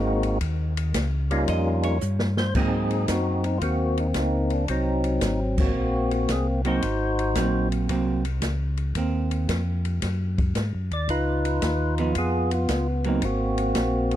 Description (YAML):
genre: soul jazz organ trio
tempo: 112 BPM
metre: 4/4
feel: swing 68% on 8ths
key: Ab mixolydian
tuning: A4 = 440 Hz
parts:
  - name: percussive tonewheel organ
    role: melody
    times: 0.0-7.7, 10.9-14.2 s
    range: Gb3 to D5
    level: -25 LUFS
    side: equal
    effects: slow rotary speaker, overdrive, tape echo
  - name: mellow tonewheel organ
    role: bass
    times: 0.0-14.2 s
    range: Ab1 to Ab2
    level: -26 LUFS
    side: left 1 dB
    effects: slow rotary speaker
  - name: open jazz drum kit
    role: drums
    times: 0.2-14.2 s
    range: crash cymbal, hi-hat, kick drum, ride cymbal, snare drum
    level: -30 LUFS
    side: left 1 dB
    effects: none
  - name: vintage hollow-body jazz guitar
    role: accompaniment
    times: 1.5-13.2 s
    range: F3 to Eb5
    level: -28 LUFS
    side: right 5 dB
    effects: none
room: little or no reverb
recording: dry, close 1970s-style studio recording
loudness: -22 LUFS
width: side -12 dB against mid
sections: 0.0-2.6 A section; 2.6-14.2 B section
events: drum fill 2.0-2.6; band accent 5.5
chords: 0.4 Eb9; 2.6 Ab9; 11.1 Db9; 13.2 Ab9